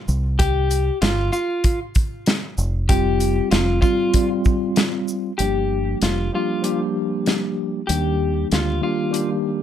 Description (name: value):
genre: hip hop, boom-bap hip-hop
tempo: 96 BPM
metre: 4/4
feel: swing 56% on 16ths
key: G minor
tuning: A4 = 440 Hz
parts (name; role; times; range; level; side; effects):
- deep dub fingered electric bass; bass; 0.1-8.8 s; F1 to Eb2; -22 LUFS; equal; none
- warm soul drum kit; drums; 0.1-9.3 s; hi-hat, kick drum, shaker, snare drum; -20 LUFS; equal; none
- electric guitar at the edge of break-up; melody; 0.4-9.3 s; F4 to G4; -24 LUFS; left 1 dB; high-pass filter, low-pass filter
- mellow tine electric piano; accompaniment; 2.9-9.6 s; Eb3 to G4; -22 LUFS; left 1 dB; medium stereo tremolo, cassette tape, high-pass filter, low-pass filter
room: little or no reverb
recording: none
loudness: -18 LUFS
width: side -10 dB against mid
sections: 0.0-5.4 A section; 5.4-9.6 B section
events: break 0.0-2.9; kick muted 5.4-9.6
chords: 0.1 C5; 2.6 Fsus2; 5.4 Gm7; 7.9 Ebmaj7